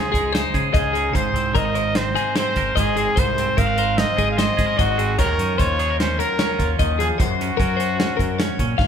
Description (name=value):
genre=math rock and midwest emo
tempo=149 BPM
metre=5/4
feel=straight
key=unclear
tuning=A4 = 440 Hz
part: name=breathy trumpet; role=melody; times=0.0-8.8 s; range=Gb4 to F5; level=-24 LUFS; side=equal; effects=none
part: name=twangy electric guitar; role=accompaniment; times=0.0-8.9 s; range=Gb2 to Bb4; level=-25 LUFS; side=right 8 dB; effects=none
part: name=twelve-string electric guitar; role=arpeggios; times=0.0-8.9 s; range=Ab4 to F5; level=-24 LUFS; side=left 8 dB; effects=none
part: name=growling fingered electric bass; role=bass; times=0.1-8.9 s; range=Ab1 to Db3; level=-26 LUFS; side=equal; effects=overdrive
part: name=modern studio drum kit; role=drums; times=0.1-8.9 s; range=hi-hat, kick drum, snare drum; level=-23 LUFS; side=equal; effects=none
room=moderate recital hall reverb, RT60 1.5 s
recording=recorded in a church or concert hall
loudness=-17 LUFS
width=side -8 dB against mid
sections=0.0-8.9 A section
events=none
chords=0.0 Dbmaj9; 1.1 Ab13; 5.2 Ebm9; 7.2 Gb